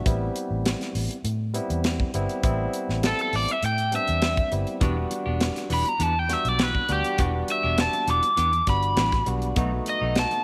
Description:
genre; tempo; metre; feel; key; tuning
straight-eighth soul blues; 101 BPM; 4/4; straight; E minor; A4 = 436 Hz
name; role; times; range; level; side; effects
barky tine electric piano; accompaniment; 0.0-10.4 s; G3 to F#4; -33 LUFS; equal; overdrive
vintage muted fingered electric bass; bass; 0.0-10.2 s; E1 to A2; -30 LUFS; equal; none
tight funk drum kit; drums; 0.1-10.4 s; hi-hat, kick drum, snare drum; -29 LUFS; equal; none
crunchy overdriven guitar; melody; 3.1-10.4 s; G4 to D6; -27 LUFS; equal; none
clean electric guitar; stabs; 4.8-10.4 s; B2 to G4; -36 LUFS; equal; spring reverb
room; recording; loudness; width
moderate echo chamber reverb, RT60 2.2 s; none; -24 LUFS; mono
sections
0.0-10.4 A section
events
none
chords
0.1 Am7; 4.8 Em7; 9.6 B7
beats
| 0.07 0.66 1.25 1.85 | 2.44 3.04 3.63 4.22 | 4.82 5.41 6.01 6.60 | 7.19 7.79 8.38 8.98 | 9.57 10.16

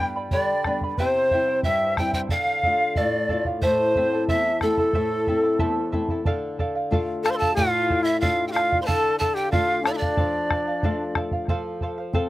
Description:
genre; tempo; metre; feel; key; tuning
andean folk, Andean ensemble; 91 BPM; 2/4; straight; unclear; A4 = 440 Hz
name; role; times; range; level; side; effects
bright polished pan flute; melody; 0.0-11.2 s; A4 to C6; -24 LUFS; right 2 dB; none
breathy bright large quena; second line; 0.0-11.1 s; D4 to G5; -26 LUFS; left 3 dB; none
charango; accompaniment; 0.0-12.3 s; E4 to B5; -30 LUFS; right 3 dB; slapback echo
flamenco guitar; accompaniment; 0.0-12.3 s; E2 to A4; -28 LUFS; left 3 dB; none
bombo; percussion; 0.3-12.3 s; none; -27 LUFS; equal; none
room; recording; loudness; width
little or no reverb; recorded outdoors, with no room sound; -20 LUFS; side -16 dB against mid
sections
0.0-6.3 A section; 6.3-12.3 B section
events
none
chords
0.0 G; 1.0 C; 2.3 Dm; 3.6 Am; 6.3 Dm; 11.5 F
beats
0.33 | 0.99 1.65 | 2.31 2.97 | 3.63 4.29 | 4.94 5.60 | 6.26 6.91 | 7.57 8.22 | 8.88 9.53 | 10.18 10.84 | 11.49 12.14

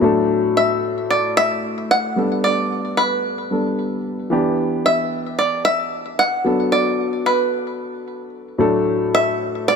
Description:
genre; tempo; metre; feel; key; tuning
pop; 112 BPM; 4/4; straight; E minor; A4 = 440 Hz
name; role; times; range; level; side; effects
warm baby grand piano; accompaniment; 0.0-9.8 s; A2 to A4; -20 LUFS; left 2 dB; none
bluegrass banjo; melody; 0.6-9.8 s; B4 to F#5; -18 LUFS; right 1 dB; none
room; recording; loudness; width
moderate plate reverb, RT60 3.4 s; none; -17 LUFS; side -6 dB against mid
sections
0.0-9.8 A section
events
none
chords
0.0 D/A; 2.2 Gadd9; 4.3 Em7; 6.5 Bm7; 8.6 D/A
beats
| 0.03 0.56 1.10 1.64 | 2.17 2.71 3.24 3.78 | 4.31 4.85 5.38 5.92 | 6.46 6.99 7.53 8.06 | 8.60 9.13 9.67

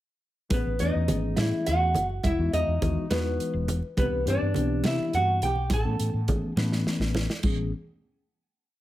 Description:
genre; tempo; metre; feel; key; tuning
electric jazz fusion; 69 BPM (dotted quarters); 6/8; straight; A lydian; A4 = 440 Hz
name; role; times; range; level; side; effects
nylon-string guitar; melody; 0.5-6.8 s; B4 to A5; -29 LUFS; right 1 dB; none
vintage hollow-body jazz guitar; second line; 0.5-6.8 s; B3 to A4; -33 LUFS; equal; none
mellow tine electric piano; accompaniment; 0.5-7.7 s; E3 to B4; -31 LUFS; left 2 dB; phaser
woody fretless electric bass; bass; 0.5-7.7 s; E1 to C3; -28 LUFS; equal; wide subtle chorus
modern studio drum kit; drums; 0.5-7.6 s; crash cymbal, hi-hat, kick drum, snare drum; -31 LUFS; equal; none
congas; percussion; 0.5-7.7 s; none; -32 LUFS; right 2 dB; none
room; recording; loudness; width
light reverb, studio reverb; none; -24 LUFS; side -14 dB against mid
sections
0.5-7.4 A section; 7.4-8.8 final chord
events
drum fill 6.6-7.4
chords
0.5 Amaj9; 2.2 Emaj9; 4.0 Cmaj9; 5.7 Amaj9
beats
| 0.51 1.38 | 2.24 3.11 | 3.97 4.84 | 5.71 6.57 | 7.44

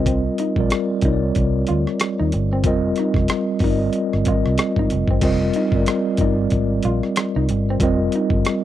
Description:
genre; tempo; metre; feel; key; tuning
R&B, neo-soul; 93 BPM; 4/4; swing 58% on 16ths; unclear; A4 = 440 Hz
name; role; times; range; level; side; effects
electric guitar through a small old amp; second line; 0.0-8.3 s; C4 to F4; -27 LUFS; right 2 dB; none
mellow tine electric piano; accompaniment; 0.0-8.6 s; G3 to Eb5; -20 LUFS; equal; medium stereo tremolo
vintage muted fingered electric bass; bass; 0.0-8.4 s; F1 to Eb2; -22 LUFS; equal; none
boom bap sampler-style drum kit; drums; 0.1-8.6 s; crash cymbal, hi-hat, kick drum, rim click; -22 LUFS; equal; overdrive
room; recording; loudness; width
digital ambience; dry, close 1970s-style studio recording; -17 LUFS; side -12 dB against mid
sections
0.0-5.2 A section; 5.2-8.6 A section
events
none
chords
0.0 Cm11; 2.6 F7sus2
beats
| 0.06 0.71 1.35 2.00 | 2.64 3.29 3.93 4.58 | 5.22 5.87 6.51 7.16 | 7.80 8.45

